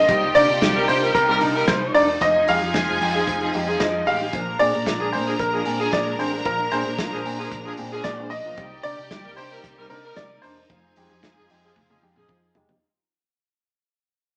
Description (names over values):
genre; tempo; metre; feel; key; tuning
disco; 113 BPM; 4/4; straight; unclear; A4 = 440 Hz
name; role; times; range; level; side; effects
clear baby grand piano; melody; 0.0-12.2 s; Bb4 to F5; -24 LUFS; equal; none
clear studio string section; second line; 0.0-12.5 s; C4 to Bb5; -31 LUFS; equal; none
clear symphonic string section; sustained chords; 0.0-12.8 s; C3 to D5; -33 LUFS; equal; none
hollow-body short-scale fingered electric bass; bass; 0.0-12.8 s; E1 to C3; -36 LUFS; equal; none
overdriven clav; accompaniment; 0.1-12.8 s; Bb2 to Bb4; -32 LUFS; equal; phaser
warm soul drum kit; drums; 0.1-12.8 s; hi-hat, kick drum, snare drum, toms; -31 LUFS; equal; none
clear horn section; stabs; 0.8-12.5 s; F3 to Bb4; -29 LUFS; equal; none
room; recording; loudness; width
wet studio reverb, RT60 0.6 s; band playing live in one room, small speaker sound; -21 LUFS; mono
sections
0.0-12.8 A section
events
fade-out 0.0-12.8; drum fill 11.8-12.8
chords
0.1 Cm7; 2.2 Fm7; 4.3 Bb7; 8.6 Cm7; 10.7 Fm7